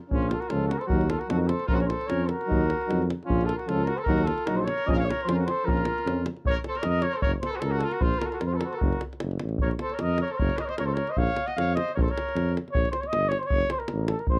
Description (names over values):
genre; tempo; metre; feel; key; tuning
balkan folk, Balkan brass band; 152 BPM; 2/4; straight; Bb harmonic minor; A4 = 440 Hz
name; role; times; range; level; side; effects
mellow flugelhorn; melody; 0.1-14.4 s; F4 to Gb5; -32 LUFS; equal; none
clear trumpet; second line; 0.1-12.5 s; Db4 to Eb5; -37 LUFS; equal; none
bright trombone; accompaniment; 0.1-6.2 s; Db4 to Eb4; -36 LUFS; equal; none
mellow euphonium; accompaniment; 0.1-6.2 s; F3 to Gb3; -34 LUFS; equal; none
warm tuba; bass; 0.1-14.4 s; Gb1 to F2; -30 LUFS; equal; none
davul; percussion; 0.1-14.4 s; none; -32 LUFS; equal; none
room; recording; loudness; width
small room reverb; dry, close 1970s-style studio recording; -26 LUFS; mono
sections
0.1-6.4 A section; 6.4-12.7 B section; 12.7-14.4 B section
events
none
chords
0.1 Bbm; 0.9 Ebm; 1.7 Bbm; 2.5 Ebm; 3.3 Bbm; 4.1 Ebm; 4.9 Bbm; 6.4 Bb5; 7.2 Gb5; 8.0 Bb5; 8.8 Gbm; 9.6 Bb5; 10.4 Gb5; 11.2 Bb5; 12.7 Gdim; 13.5 Gbm